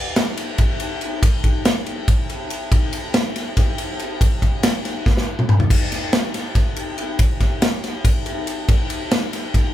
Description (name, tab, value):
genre	rock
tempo	281 BPM (eighths)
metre	7/8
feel	straight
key	none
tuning	none
part	modern studio drum kit	drums	0.2-9.6 s	crash cymbal, kick drum, ride cymbal, snare drum, toms	-17 LUFS	equal	none
room	light reverb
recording	band playing live in one room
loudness	-17 LUFS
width	side -12 dB against mid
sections	0.0-9.7 A section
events	drum fill 5.1-5.7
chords	none